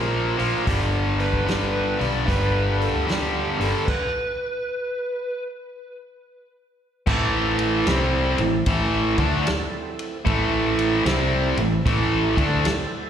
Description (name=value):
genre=blues rock power trio and southern rock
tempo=75 BPM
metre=4/4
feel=swing 65% on 8ths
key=A minor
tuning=A4 = 440 Hz
part: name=overdriven tonewheel organ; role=sustained chords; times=0.0-13.1 s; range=F3 to Bb4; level=-34 LUFS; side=right 5 dB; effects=none
part: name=overdriven electric guitar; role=riff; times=0.0-12.7 s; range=G2 to D4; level=-22 LUFS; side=equal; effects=slapback echo
part: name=hollow-body short-scale fingered electric bass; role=bass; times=0.0-12.6 s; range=G1 to D2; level=-25 LUFS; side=equal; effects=none
part: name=vintage drum kit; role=drums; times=0.4-12.9 s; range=crash cymbal, hi-hat, kick drum, ride cymbal, snare drum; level=-27 LUFS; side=equal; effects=none
part: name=overdriven slide guitar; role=melody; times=1.2-5.4 s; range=G4 to D5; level=-27 LUFS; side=equal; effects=slapback echo, digital delay
room=light reverb, small room ambience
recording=live gig heard through the venue's PA, recital hall reverb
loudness=-20 LUFS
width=side -9 dB against mid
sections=0.0-7.1 A section; 7.1-13.1 B section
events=stop 3.9-7.1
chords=0.0 Bb5; 0.7 G; 5.5 N.C.; 7.1 Am